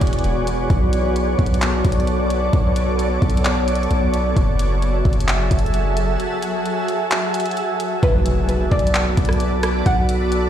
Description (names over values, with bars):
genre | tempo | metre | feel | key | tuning
hip hop, atmospheric cloud-rap | 131 BPM | 4/4 | half-time | B dorian | A4 = 438 Hz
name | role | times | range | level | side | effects
shimmering ambient pad | sustained chords | 0.0-10.5 s | E3 to E5 | -21 LUFS | equal | chorus, built-in reverb, sidechain pumping
long sustained 808-style bass | bass | 0.0-10.5 s | E1 to B1 | -20 LUFS | equal | none
smooth R&B drum kit | drums | 0.0-10.4 s | handclaps, hi-hat, kick drum, rim click | -20 LUFS | equal | none
soft round pluck | melody | 8.0-10.5 s | B4 to F#5 | -24 LUFS | equal | chorus, digital delay
impact | sound effects | 8.0-9.9 s | none | -28 LUFS | equal | none
room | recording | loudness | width
light reverb, digital ambience | played on a big sound system in a bare room, large studio reverb | -16 LUFS | side -10 dB against mid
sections
0.0-8.0 A section; 8.0-10.5 B section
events
break 6.2-8.0; impact 8.0-9.9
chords
0.0 E13; 0.7 Bm7; 4.4 F#m7; 8.0 Bm7